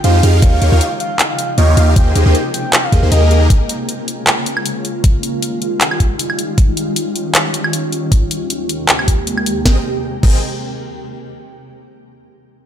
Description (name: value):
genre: future bass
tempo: 156 BPM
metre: 4/4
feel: swing 54% on 16ths, half-time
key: Ab major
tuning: A4 = 439 Hz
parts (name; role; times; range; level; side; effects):
- soft octave-layered synth lead; melody; 0.0-3.4 s; Eb5 to G5; -22 LUFS; equal; chorus, sidechain pumping, ping-pong delay
- shimmering ambient pad; sustained chords; 0.0-9.8 s; Eb2 to G5; -22 LUFS; equal; chorus, built-in reverb, sidechain pumping
- supersaw chords; riff; 0.0-3.5, 9.7-10.4 s; Ab3 to G5; -20 LUFS; right 1 dB; phaser, sidechain pumping, ping-pong delay
- long sustained 808-style bass; bass; 0.0-3.5, 9.7-10.4 s; Ab1 to F2; -12 LUFS; equal; sidechain pumping
- trap drum kit; drums; 0.0-10.3 s; crash cymbal, handclaps, hi-hat, snare drum, woodblock; -17 LUFS; equal; studio reverb
- electronic kick drum; drums; 0.4-10.3 s; none; -12 LUFS; equal; studio reverb
room: light reverb, digital ambience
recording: none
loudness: -12 LUFS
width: side -9 dB against mid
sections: 0.0-9.7 A section; 9.7-11.2 B section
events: filter sweep on ambient pad 0.0-9.7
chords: 0.4 Eb9; 2.0 Abmaj9/Eb; 3.5 Db6; 5.0 Fm9; 6.6 Eb9; 8.1 Abmaj9/Eb; 9.7 Abmaj9